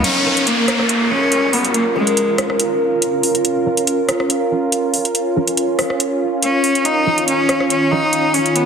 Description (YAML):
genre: deep dubstep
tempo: 141 BPM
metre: 4/4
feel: swing 54% on 16ths, half-time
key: Bb minor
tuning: A4 = 438 Hz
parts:
  - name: bright cello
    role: melody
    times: 0.0-2.6, 6.4-8.7 s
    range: Ab3 to Eb4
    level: -17 LUFS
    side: equal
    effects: dub echo
  - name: bowed-like drone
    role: sustained chords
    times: 0.0-8.7 s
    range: Eb3 to Bb4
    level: -18 LUFS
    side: right 1 dB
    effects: built-in reverb
  - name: filtered dub chord stab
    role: stabs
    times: 0.0-8.0 s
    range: F3 to Bb4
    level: -27 LUFS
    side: right 1 dB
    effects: ensemble chorus, dub echo
  - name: garage drum kit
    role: drums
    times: 0.0-8.6 s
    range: crash cymbal, hi-hat, rim click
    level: -20 LUFS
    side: equal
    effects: none
  - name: downlifter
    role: sound effects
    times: 0.0-3.4 s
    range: none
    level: -22 LUFS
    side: equal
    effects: none
room: wet lush hall reverb, RT60 2.1 s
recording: heavily compressed radio sound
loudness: -14 LUFS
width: side -6 dB against mid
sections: 0.0-8.7 A section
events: filter sweep on synth stab 0.0-8.7; filter sweep on synth drone 0.0-8.7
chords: 0.0 Bbm; 6.9 Ebsus2